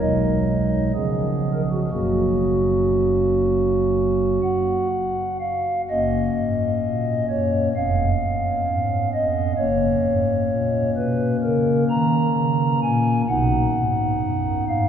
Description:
classical, chorale-style piece for pipe organ; 57-66 BPM; 4/4; rubato; F# major; A4 = 441 Hz
pipe organ, stopped flute; solo; 0.0-14.9 s; E#1 to A#5; -18 LUFS; equal
wet cathedral reverb, RT60 5.8 s; heard from further back in the room; -19 LUFS; side -8 dB against mid
0.0-5.9 A section; 5.9-14.9 B section
0.0 G#m7/B; 0.9 C#7; 1.9 F#; 7.8 C#7/E#; 9.6 F#; 13.3 B

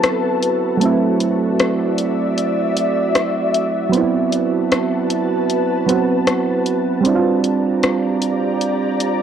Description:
contemporary R&B; 77 BPM; 4/4; swing 58% on 16ths; A dorian; A4 = 441 Hz
soft electric-piano-like synth keys; accompaniment; 0.0-9.2 s; F#3 to F#4; -18 LUFS; right 4 dB; chorus, cassette tape
ethereal airy pad; sustained chords; 0.0-9.2 s; F#4 to Bb5; -21 LUFS; left 2 dB; ensemble chorus, built-in reverb, cassette tape
smooth R&B drum kit; drums; 0.0-9.2 s; hi-hat, rim click; -20 LUFS; left 3 dB; cassette tape
moderate spring reverb, RT60 2.0 s; home recording on cassette; -15 LUFS; side -8 dB against mid
0.0-9.2 A section
break 0.0-9.2
0.0 Am69; 0.8 D9; 3.9 Am69; 7.0 Bb69

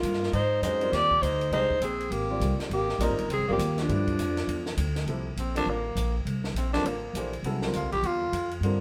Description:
modal jazz; 203 BPM; 4/4; swing 62% on 8ths; C mixolydian from 5.1 s; A4 = 440 Hz
breathy alto saxophone; melody; 0.0-4.8 s; D4 to D5; -30 LUFS; equal
growling tenor saxophone; second line; 0.0-8.5 s; F3 to G4; -34 LUFS; equal
upright bass; bass; 0.0-8.8 s; G1 to Ab2; -32 LUFS; equal
compact cocktail drum kit; drums; 0.0-8.7 s; hi-hat, kick drum, ride cymbal, snare drum; -40 LUFS; equal
clear concert grand piano; accompaniment; 0.6-8.8 s; C3 to Eb5; -36 LUFS; equal
wet studio reverb, RT60 0.8 s; band playing live in one room; -28 LUFS; mono
0.0-5.1 A section; 5.1-8.8 B section
tenor saxophone solo 5.1-8.8
0.3 Abmaj9; 3.9 G7; 5.1 C9sus4

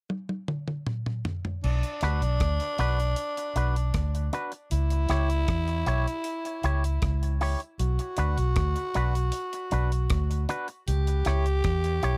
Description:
roots reggae; 78 BPM; 4/4; straight; B minor; A4 = 440 Hz
deep reggae drum kit; drums; 0.1-12.2 s; crash cymbal, hi-hat, kick drum, rim click, toms; -34 LUFS; equal
growling tenor saxophone; second line; 1.6-12.2 s; D4 to G4; -35 LUFS; equal; tape echo
vintage muted fingered electric bass; bass; 1.6-12.2 s; B1 to E2; -28 LUFS; equal
electric guitar with an envelope filter; accompaniment; 2.0-12.2 s; D4 to C#5; -34 LUFS; equal; harmonic tremolo, tape echo
little or no reverb; -28 LUFS; mono
0.0-1.6 A section; 1.6-12.2 B section
drum fill 0.1-1.6
0.0 N.C.; 1.6 Bm; 4.7 C#dim; 7.8 Bm; 10.9 C#dim

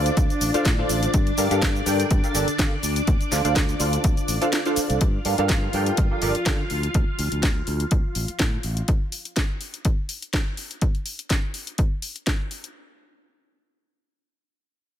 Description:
filtered disco house; 124 BPM; 4/4; swing 55% on 16ths; G minor; A4 = 440 Hz
funky polysynth comp; accompaniment; 0.0-6.6 s; D4 to G5; -25 LUFS; right 1 dB; chorus, phaser, sidechain pumping, low-pass filter
string machine, full ensemble; sustained chords; 0.0-8.9 s; D4 to F5; -28 LUFS; equal; ensemble chorus, sidechain pumping, low-pass filter
modern bright fingered electric bass; bass; 0.0-8.8 s; G1 to D3; -26 LUFS; equal; sidechain pumping, low-pass filter
house drum kit; drums; 0.1-12.7 s; hi-hat, shaker, snare drum; -28 LUFS; left 1 dB; overdrive, sidechain pumping on hats, sidechain pumping on perc
electronic kick drum; drums; 0.2-12.4 s; -22 LUFS; equal
little or no reverb; -20 LUFS; side -10 dB against mid
0.0-5.0 A section; 5.0-12.8 B section; 12.8-15.0 C section
drop 0.0-5.0; kick drops out 4.5-5.0
0.0 Dm7; 1.1 Gm9; 2.8 Dm7; 5.0 Gm9; 6.7 Dm; 8.9 N.C.

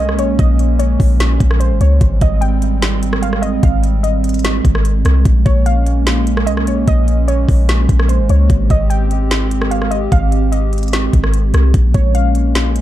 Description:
hip hop, atmospheric cloud-rap; 148 BPM; 4/4; half-time; Bb dorian; A4 = 440 Hz
warbly dusty pluck; melody; 0.0-12.5 s; C5 to G5; -23 LUFS; equal; chorus, digital delay
hollow soft pad; sustained chords; 0.0-12.8 s; G3 to G4; -20 LUFS; right 3 dB; chorus, sidechain pumping
warm 808-style bass; bass; 0.0-12.8 s; Ab1 to Db2; -14 LUFS; equal
smooth R&B drum kit; drums; 0.1-12.8 s; hi-hat, kick drum, rim click, snare drum; -17 LUFS; equal
digital ambience; dark, warm production; -11 LUFS; side -13 dB against mid
0.0-11.7 A section; 11.7-12.8 A section
0.0 Bbm7; 2.0 Abmaj7; 5.3 Bbm7; 8.5 Abmaj7; 11.7 Bbm7

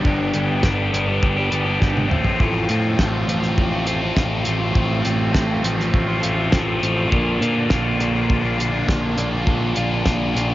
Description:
indie rock; 102 BPM; 4/4; straight; A4 = 440 Hz
crunchy overdriven guitar; riff; 0.0-10.5 s; G2 to G4; -20 LUFS; equal; phaser, cassette tape
growling picked electric bass; bass; 0.1-10.5 s; G1 to Bb2; -23 LUFS; equal; overdrive
cloth-damped thuddy drum kit; drums; 0.1-10.5 s; hi-hat, kick drum, snare drum, toms; -20 LUFS; equal; cassette tape
studio ambience; home recording on cassette, nothing above 7.5 kHz; -17 LUFS; side -15 dB against mid
0.0-10.5 A section
drum fill 1.8-2.4
0.0 G; 2.1 F/A; 7.1 Bb

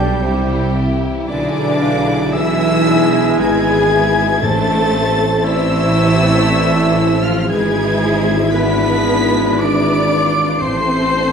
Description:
classical; 58 BPM; 3/4; rubato; A minor; A4 = 440 Hz
rich symphonic violin section; melody; 0.0-11.3 s; D6 to D7; -24 LUFS; left 1 dB
clear oboe; second line; 0.0-11.3 s; D5 to D6; -24 LUFS; equal
dark clarinet; second line; 0.0-11.3 s; B4 to G#5; -27 LUFS; left 1 dB
mellow hollow concert flute; second line; 0.0-11.3 s; D5 to D6; -24 LUFS; left 1 dB
warm symphonic violin section; second line; 0.0-11.3 s; C4 to C5; -24 LUFS; left 3 dB
warm symphonic viola section; accompaniment; 0.0-11.3 s; D4 to D5; -21 LUFS; equal
clear trombone section; sustained chords; 0.0-11.3 s; B2 to A3; -24 LUFS; right 2 dB
mellow French horn section; sustained chords; 0.0-11.3 s; B3 to A4; -22 LUFS; left 3 dB
clear symphonic double bass section; bass; 0.0-11.3 s; G#1 to C2; -22 LUFS; right 2 dB
mellow tuba; bass; 0.0-11.3 s; G#1 to C2; -22 LUFS; right 1 dB
rich symphonic cello section; bass; 0.0-11.3 s; D3 to D4; -21 LUFS; right 2 dB
timpani; percussion; 4.4-11.3 s; A2; -25 LUFS; left 1 dB
wet recital hall reverb, RT60 1.4 s; recorded in a church or concert hall; -12 LUFS; side -6 dB against mid
0.0-11.3 A section
0.2 C; 1.3 E7/B; 4.4 Am; 7.5 E7/G#; 10.6 Am

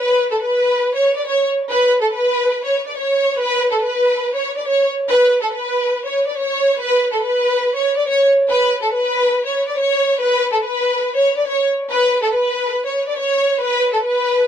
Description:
hip hop; 141 BPM; 4/4; half-time; A4 = 439 Hz
warm studio violin section; solo; 0.0-14.5 s; A4 to D5; -15 LUFS; equal
light reverb; dry, gritty hardware recording, transformer saturation; -15 LUFS; side -9 dB against mid
0.0-5.1 A section; 5.1-14.5 B section

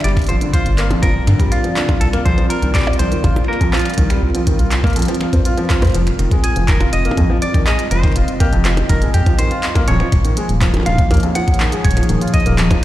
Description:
IDM; 122 BPM; 4/4; straight; F dorian; A4 = 440 Hz
semi-hollow electric guitar; melody; 0.0-12.8 s; F4 to Gb5; -24 LUFS; equal; dub echo
warbly tape-like pad; sustained chords; 0.0-12.8 s; F3 to Eb5; -23 LUFS; equal; chorus, built-in reverb
felt-muted upright piano; arpeggios; 0.0-12.8 s; F2 to F4; -22 LUFS; equal; dub echo
round analog bass; bass; 0.0-12.8 s; Eb1 to G2; -16 LUFS; equal; tube saturation
glitchy drum kit; drums; 0.0-12.8 s; finger snaps, handclaps, hi-hat, percussion blips, rim click; -24 LUFS; right 1 dB; overdrive, digital delay
electronic kick drum; drums; 0.2-12.8 s; -16 LUFS; equal
little or no reverb; played on a big sound system in a bare room, large studio reverb; -13 LUFS; side -14 dB against mid
0.0-5.9 A section; 5.9-12.8 B section
drum fill 5.6-5.9
0.0 Gm7; 2.0 C9sus4; 5.9 F9sus4; 9.9 Eb9sus4

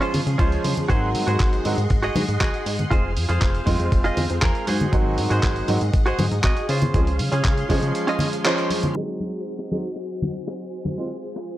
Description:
nu-disco, nu disco; 119 BPM; 4/4; straight; Ab mixolydian; A4 = 438 Hz
clear baby grand piano; accompaniment; 0.0-11.1 s; Eb3 to C5; -26 LUFS; right 1 dB; vintage 12-bit sampler grit, slapback echo
string machine, full ensemble; sustained chords; 0.0-11.6 s; F4 to C6; -32 LUFS; left 1 dB; ensemble chorus, sidechain pumping
direct-recorded clean electric guitar; riff; 0.0-8.7 s; Db4 to Eb5; -26 LUFS; right 2 dB; lush chorus, slapback echo
dusty soul sampler-style drum kit; drums; 0.0-8.9 s; handclaps, hi-hat; -29 LUFS; right 1 dB
chorused synth bass; bass; 0.1-7.9 s; F1 to Db3; -24 LUFS; equal
congas, cabasa and bongos; percussion; 0.1-11.6 s; -28 LUFS; left 1 dB
electronic kick drum; drums; 0.4-7.8 s; -21 LUFS; equal
light reverb, digital ambience; low-pass filter; -19 LUFS; side -14 dB against mid
0.0-9.0 A section; 9.0-11.6 B section
band accent 8.5; filter sweep on string machine 9.0-11.6; filter sweep 9.0-11.6
0.0 Dbmaj7; 0.9 Ab7; 2.9 Fm; 4.7 Ab7; 6.7 Dbmaj7; 9.0 Ab7; 11.0 Fm

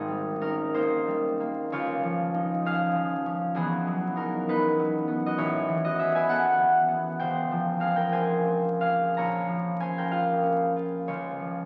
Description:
classical, solo harp piece; 55-68 BPM (dotted quarters); 6/8; rubato; A4 = 440 Hz
concert harp; solo; 0.0-11.7 s; E1 to Bb5; -27 LUFS; equal
wet recital hall reverb, RT60 1.6 s; very old 78 rpm record, vinyl crackle; -27 LUFS; mono
0.0-11.7 A section
0.0 Abmaj9; 1.7 Dbadd9; 3.5 Emaj9; 5.4 Aadd9; 7.2 Dbmaj7#11; 9.1 Bbm7; 11.0 Db

